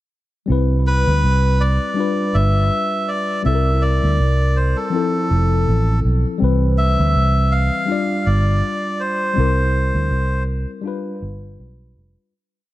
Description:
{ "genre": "lovers rock reggae", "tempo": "81 BPM", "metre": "4/4", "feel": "swing 55% on 16ths", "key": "C major", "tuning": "A4 = 440 Hz", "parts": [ { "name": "mellow tine electric piano", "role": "accompaniment", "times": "0.5-12.3 s", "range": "E3 to D5", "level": "-22 LUFS", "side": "left 3 dB", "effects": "overdrive, auto-pan, tape echo" }, { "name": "vintage muted fingered electric bass", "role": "bass", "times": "0.5-12.1 s", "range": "F1 to D2", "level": "-16 LUFS", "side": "right 1 dB", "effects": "none" }, { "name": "melodica", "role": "melody", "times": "0.9-10.4 s", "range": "A4 to F5", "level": "-22 LUFS", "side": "equal", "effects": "tape echo" } ], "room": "studio reverb", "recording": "none", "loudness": "-16 LUFS", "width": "side -16 dB against mid", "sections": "0.5-12.3 verse", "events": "fade-out 9.4-12.3", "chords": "0.5 Cmaj7; 2.0 G7; 3.4 C7; 4.9 Fmaj7; 6.4 Cmaj7; 7.9 G5; 9.4 C7; 10.8 G7" }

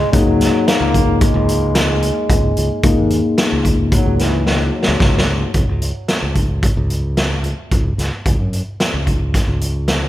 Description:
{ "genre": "progressive instrumental, band music in an uneven meter", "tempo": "111 BPM", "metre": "5/4", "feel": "straight", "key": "unclear", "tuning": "A4 = 440 Hz", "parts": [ { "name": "clear trombone", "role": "second line", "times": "0.0-5.3 s", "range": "D#3 to A#3", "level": "-22 LUFS", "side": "equal", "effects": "ping-pong delay, slapback echo" }, { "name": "bright tine electric piano", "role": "accompaniment", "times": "0.0-5.5 s", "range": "A#3 to G#4", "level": "-19 LUFS", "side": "left 4 dB", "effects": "none" }, { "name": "modern bright fingered electric bass", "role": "bass", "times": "0.0-10.1 s", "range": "C#2 to F#2", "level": "-19 LUFS", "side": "equal", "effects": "none" }, { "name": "raw garage drum kit", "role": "drums", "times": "0.1-10.0 s", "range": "hi-hat, kick drum, snare drum", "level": "-17 LUFS", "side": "equal", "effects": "none" } ], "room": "moderate lush hall reverb, RT60 1.6 s, small room ambience", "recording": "big arena sound", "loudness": "-14 LUFS", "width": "side -14 dB against mid", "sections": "0.0-5.5 A section; 5.5-10.1 B section", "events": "drum fill 4.5-5.5", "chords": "0.1 C#sus2; 5.5 N.C." }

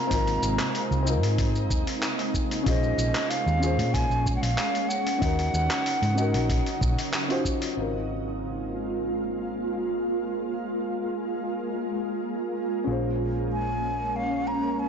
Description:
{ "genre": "sunset chillout", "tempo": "94 BPM", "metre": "4/4", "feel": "straight", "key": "Ab mixolydian", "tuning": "A4 = 445 Hz", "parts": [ { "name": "breathy mellow silver concert flute", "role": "melody", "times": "0.0-7.1, 13.5-14.9 s", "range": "Eb5 to Bb5", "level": "-30 LUFS", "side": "right 2 dB", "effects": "ping-pong delay" }, { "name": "dark concert grand piano", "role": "accompaniment", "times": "0.0-14.9 s", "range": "C4 to C5", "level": "-32 LUFS", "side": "moving between left 8 dB and right 3 dB", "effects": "auto-pan, tape echo" }, { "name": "shimmering ambient pad", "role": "sustained chords", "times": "0.0-14.9 s", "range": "C3 to F4", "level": "-30 LUFS", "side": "right 1 dB", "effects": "chorus, built-in reverb" }, { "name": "hollow-body short-scale fingered electric bass", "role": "bass", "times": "0.1-14.9 s", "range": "Ab1 to Bb2", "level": "-28 LUFS", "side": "equal", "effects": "none" }, { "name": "dusty soul sampler-style drum kit", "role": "drums", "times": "0.1-7.7 s", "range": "handclaps, hi-hat, shaker", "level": "-32 LUFS", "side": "left 1 dB", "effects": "low-pass filter on hats, low-pass filter on perc, low-pass filter on snare, low-pass filter on room" }, { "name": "electronic kick drum", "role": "drums", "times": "0.1-7.6 s", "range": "none", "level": "-27 LUFS", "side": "equal", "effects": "none" } ], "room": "moderate plate reverb, RT60 2.0 s, digital ambience", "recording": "blown-out, overdriven recording, overdrive, nothing above 7.7 kHz", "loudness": "-24 LUFS", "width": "side -7 dB against mid", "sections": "0.0-7.8 A section; 7.8-14.9 B section", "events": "none", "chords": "0.0 Ab69; 2.7 Bbm9; 5.2 Ebm7; 7.8 Ab69; 12.9 Bbm9" }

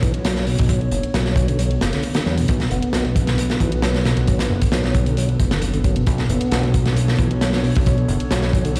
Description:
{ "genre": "breakbeat, breaks", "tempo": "134 BPM", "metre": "4/4", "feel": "straight", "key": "B minor", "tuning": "A4 = 440 Hz", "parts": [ { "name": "dark analog pad", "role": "sustained chords", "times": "0.0-8.8 s", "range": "B3 to C#5", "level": "-29 LUFS", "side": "equal", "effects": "chorus, sidechain pumping" }, { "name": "tonewheel organ", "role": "riff", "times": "0.0-8.8 s", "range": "B2 to B3", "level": "-26 LUFS", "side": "equal", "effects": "slow rotary speaker, tape echo" }, { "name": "fat analog bass", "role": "bass", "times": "0.0-8.8 s", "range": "F#1 to E2", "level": "-24 LUFS", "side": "equal", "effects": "none" }, { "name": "crunchy breakbeat drum kit", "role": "drums", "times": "0.0-8.8 s", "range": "hi-hat, kick drum, snare drum", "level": "-23 LUFS", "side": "equal", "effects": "none" }, { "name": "electronic hi-hat", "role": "drums", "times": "0.1-8.8 s", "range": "none", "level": "-40 LUFS", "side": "equal", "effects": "none" } ], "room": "light reverb, studio reverb", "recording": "played on a big sound system in a bare room, large studio reverb, vinyl crackle", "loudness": "-19 LUFS", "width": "mono", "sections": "0.0-8.8 A section", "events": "none", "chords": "0.0 Bm9" }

